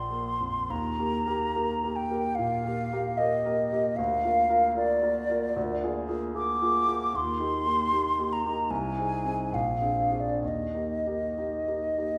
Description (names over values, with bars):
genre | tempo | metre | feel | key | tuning
classical, romantic duo for flute and grand piano | 74 BPM | 4/4 | uneven beats, rubato | Eb major | A4 = 441 Hz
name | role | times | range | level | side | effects
mellow hollow silver concert flute | melody | 0.0-12.2 s | D5 to D6 | -29 LUFS | equal | none
warm concert grand piano | accompaniment | 0.0-12.2 s | Bb1 to D5 | -33 LUFS | equal | none
room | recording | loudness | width
wet recital hall reverb, RT60 1.3 s | heard from further back in the room | -28 LUFS | mono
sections
0.7-12.2 A section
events
none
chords
0.0 Bb; 0.7 Eb; 4.0 Bb/D; 5.6 Bb7/D; 7.1 Eb; 8.7 Ab/C; 9.5 Bb9; 10.4 Eb